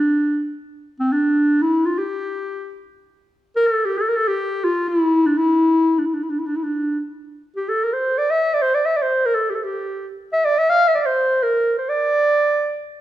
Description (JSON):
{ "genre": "turkish", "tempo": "free time", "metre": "none", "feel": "none", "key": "D makam ussak", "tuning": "A4 = 440 Hz", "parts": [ { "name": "dark clarinet", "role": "solo", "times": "0.0-12.9 s", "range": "C4 to F5", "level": "-17 LUFS", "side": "equal", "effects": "none" } ], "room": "wet recital hall reverb, RT60 1.6 s", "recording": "minimal, uncompressed stereo recording", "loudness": "-17 LUFS", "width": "side -13 dB against mid", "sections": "0.0-13.0 A section", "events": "none", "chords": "none" }